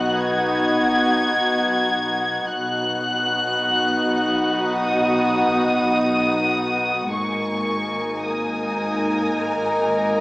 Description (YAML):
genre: cinematic, suspense film score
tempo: free time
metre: none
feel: none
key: unclear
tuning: A4 = 440 Hz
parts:
  - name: warm studio violin section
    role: melody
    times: 0.0-10.2 s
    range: A#5 to G#6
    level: -23 LUFS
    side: left 1 dB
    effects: none
  - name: warm chamber violin section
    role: second line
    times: 0.0-10.2 s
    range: F#4 to G#5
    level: -24 LUFS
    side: left 1 dB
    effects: none
  - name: warm studio viola section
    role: accompaniment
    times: 0.0-10.2 s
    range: A#3 to D#4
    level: -23 LUFS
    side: equal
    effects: none
  - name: warm chamber double bass section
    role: bass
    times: 0.0-10.2 s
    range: G#1 to B1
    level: -34 LUFS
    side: right 1 dB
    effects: none
  - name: warm studio cello section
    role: bass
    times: 0.0-10.2 s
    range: G#2 to B2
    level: -28 LUFS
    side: equal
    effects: none
room: wet scoring stage reverb, RT60 2.0 s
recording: small speaker sound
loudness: -18 LUFS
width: side -20 dB against mid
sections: 0.0-10.2 A section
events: none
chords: 0.0 B; 7.1 G#sus2